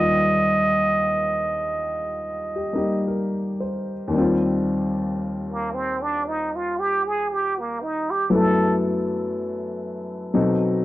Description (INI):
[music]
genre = jazz ballad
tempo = 58 BPM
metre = 4/4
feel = swing 68% on 8ths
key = Eb major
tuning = A4 = 440 Hz
[part]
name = trumpet with plunger mute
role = melody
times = 0.0-8.8 s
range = Bb3 to Eb5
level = -22 LUFS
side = right 2 dB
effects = none
[part]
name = clear upright piano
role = accompaniment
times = 0.0-10.8 s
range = Eb2 to C5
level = -22 LUFS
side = left 2 dB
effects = none
[sound]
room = small room reverb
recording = dry, close 1970s-style studio recording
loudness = -21 LUFS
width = side -15 dB against mid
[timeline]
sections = 0.0-4.1 A section; 4.1-10.8 B section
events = muted trumpet solo 4.1-10.8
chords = 0.0 Ebmaj7; 4.1 Eb69; 8.3 Gbm7; 10.3 B7b9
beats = 0.98 2.03 3.08 | 4.13 5.18 6.22 7.25 | 8.29 9.32 10.35